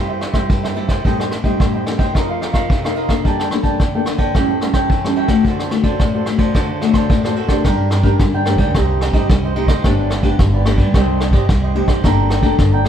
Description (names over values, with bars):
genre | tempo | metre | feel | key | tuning
samba and choro | 109 BPM | 4/4 | straight | G minor from 7.6 s | A4 = 440 Hz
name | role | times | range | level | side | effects
cavaquinho | accompaniment | 0.0-12.9 s | D4 to Bb5 | -23 LUFS | right 2 dB | none
nylon-string guitar | accompaniment | 0.0-12.9 s | G2 to D5 | -19 LUFS | left 2 dB | none
vintage brush drum kit | drums | 0.2-12.9 s | kick drum, ride cymbal, rim click | -17 LUFS | equal | none
upright bass | bass | 7.6-12.9 s | G1 to G2 | -17 LUFS | equal | none
room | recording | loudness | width
moderate studio reverb, RT60 0.8 s | heard from further back in the room | -14 LUFS | side -9 dB against mid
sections
0.0-7.6 A section; 7.6-12.9 B section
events
none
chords
0.0 C/G; 1.0 Am7b5; 2.1 F7sus4; 3.2 Gmadd9; 4.3 A7; 5.5 D7; 7.6 Gm; 8.7 Cm; 9.8 G; 10.9 Cmadd9; 12.0 Gmadd9